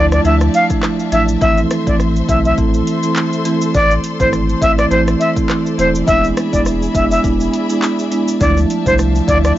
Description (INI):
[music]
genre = dancehall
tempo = 103 BPM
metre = 4/4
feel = swing 56% on 16ths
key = A harmonic minor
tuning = A4 = 439 Hz
[part]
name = jazz flute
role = melody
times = 0.0-9.5 s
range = C5 to F5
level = -16 LUFS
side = left 1 dB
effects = none
[part]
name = marimba with medium mallets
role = accompaniment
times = 0.0-9.6 s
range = E3 to E4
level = -16 LUFS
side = right 2 dB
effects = none
[part]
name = rich studio string section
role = sustained chords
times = 0.0-9.6 s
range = F3 to C6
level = -26 LUFS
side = left 4 dB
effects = sidechain pumping
[part]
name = warm sub bass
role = bass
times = 0.0-9.5 s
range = E1 to D2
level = -18 LUFS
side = equal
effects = none
[part]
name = afro-pop drum kit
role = drums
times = 0.1-9.6 s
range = handclaps, hi-hat, kick drum, rim click, shaker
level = -20 LUFS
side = equal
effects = none
[part]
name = egg shaker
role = percussion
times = 6.1-9.6 s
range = none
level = -34 LUFS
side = left 6 dB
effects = none
[sound]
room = little or no reverb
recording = dry, gritty hardware recording, cassette tape, nothing above 7.6 kHz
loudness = -12 LUFS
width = side -13 dB against mid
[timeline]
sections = 0.0-9.6 A section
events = none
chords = 0.0 Dmadd9; 1.4 Am; 6.1 E7; 8.4 Dmadd9